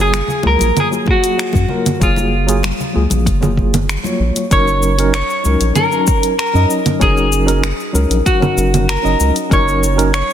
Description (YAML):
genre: sunset chillout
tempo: 96 BPM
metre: 4/4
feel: straight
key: F# major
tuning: A4 = 440 Hz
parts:
  - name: clean electric guitar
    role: melody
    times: 0.0-10.3 s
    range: E#4 to C#5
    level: -17 LUFS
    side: equal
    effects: digital delay
  - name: mellow tine electric piano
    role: accompaniment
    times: 0.0-10.1 s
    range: F#3 to D#5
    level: -19 LUFS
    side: moving between left 4 dB and right 5 dB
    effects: medium tremolo, auto-pan, ping-pong delay
  - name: round analog bass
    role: bass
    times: 0.0-10.2 s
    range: F#1 to F#2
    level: -16 LUFS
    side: equal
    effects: none
  - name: deep house drum kit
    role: drums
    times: 0.1-10.3 s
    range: congas, finger snaps, hi-hat, shaker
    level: -20 LUFS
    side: right 2 dB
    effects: studio reverb, soft clipping on snare
  - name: congas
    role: percussion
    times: 0.1-4.5 s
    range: none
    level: -26 LUFS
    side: left 4 dB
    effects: none
  - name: electronic kick drum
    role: drums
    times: 1.1-9.6 s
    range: none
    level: -16 LUFS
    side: equal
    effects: studio reverb
room: light reverb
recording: dense, heavily limited modern master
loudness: -12 LUFS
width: side -10 dB against mid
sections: 0.0-4.5 A section; 4.5-10.3 B section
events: none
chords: 0.0 F#maj9; 4.5 F#6